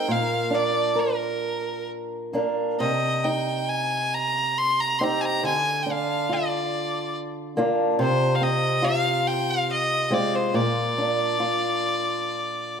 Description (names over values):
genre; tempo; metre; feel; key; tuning
celtic folk, Celtic slow air; 63-72 BPM; 3/4; rubato; unclear; A4 = 440 Hz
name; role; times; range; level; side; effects
clear fiddle; melody; 0.0-12.8 s; Bb4 to C6; -24 LUFS; equal; none
fingerpicked old ladder-braced acoustic guitar; accompaniment; 0.0-12.8 s; Bb2 to Bb4; -24 LUFS; right 1 dB; none
room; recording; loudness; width
moderate recital hall reverb, RT60 1.7 s; none; -22 LUFS; side -6 dB against mid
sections
0.0-12.8 A section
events
none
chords
0.1 Bb; 2.8 Cm; 5.4 Bb/D; 8.0 Fm/C; 10.5 Bb